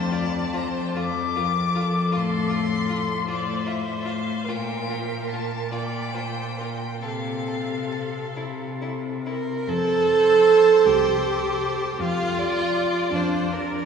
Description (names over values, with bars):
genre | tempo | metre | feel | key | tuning
classical, slow romantic movement for string quartet | 44-55 BPM (dotted quarters) | 6/8 | rubato | F major | A4 = 440 Hz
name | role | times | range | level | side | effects
rich violin | melody | 0.0-13.0 s | C5 to D6 | -30 LUFS | left 6 dB | none
rich viola | accompaniment | 0.0-13.9 s | D4 to D5 | -23 LUFS | right 4 dB | none
clear cello | bass | 0.0-13.9 s | C2 to C3 | -28 LUFS | left 3 dB | none
clear violin | second line | 0.1-13.9 s | E4 to F5 | -33 LUFS | left 2 dB | none
room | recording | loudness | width
wet cathedral reverb, RT60 5.7 s | recorded in a church or concert hall, studio reverb | -21 LUFS | side -6 dB against mid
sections
0.0-9.7 A section; 9.7-13.9 B section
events
none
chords
0.0 F; 2.1 F/A; 4.5 Bb5; 7.0 F/C; 8.4 N.C.; 9.7 F; 12.0 Bbadd9/F (rootless)